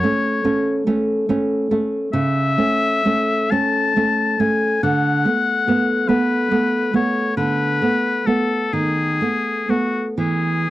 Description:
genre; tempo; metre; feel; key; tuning
romantic duo for oboe and classical guitar; 40-48 BPM (dotted quarters); 6/8; rubato; unclear; A4 = 436 Hz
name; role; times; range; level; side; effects
bright oboe; melody; 0.0-10.7 s; F#4 to A5; -21 LUFS; left 4 dB; none
nylon-string guitar; accompaniment; 0.0-10.7 s; C#3 to C#4; -18 LUFS; right 1 dB; none
room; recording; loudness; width
little or no reverb; dry, close 1970s-style studio recording; -17 LUFS; side -15 dB against mid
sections
0.0-10.7 A section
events
none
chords
0.0 F#m (rootless); 2.1 A/C#; 4.8 Bm7/D; 8.7 B7/D#; 10.2 E

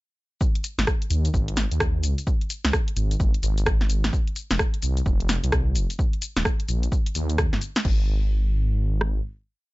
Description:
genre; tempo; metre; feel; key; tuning
UK garage, two-step garage; 129 BPM; 4/4; swing 62% on 16ths; Ab major; A4 = 437 Hz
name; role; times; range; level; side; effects
garage drum kit; drums; 0.4-8.0 s; crash cymbal, hi-hat, rim click, shaker, snare drum; -26 LUFS; equal; none
punchy analog drum machine; drums; 0.4-9.1 s; kick drum, rim click; -24 LUFS; equal; none
dark detuned saw bass; bass; 0.8-9.2 s; Eb1 to Eb2; -23 LUFS; equal; sidechain pumping
room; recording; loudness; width
little or no reverb; nothing above 7.8 kHz; -21 LUFS; side -20 dB against mid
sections
0.4-7.8 drop; 7.8-9.7 final note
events
drop 0.4-7.8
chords
none

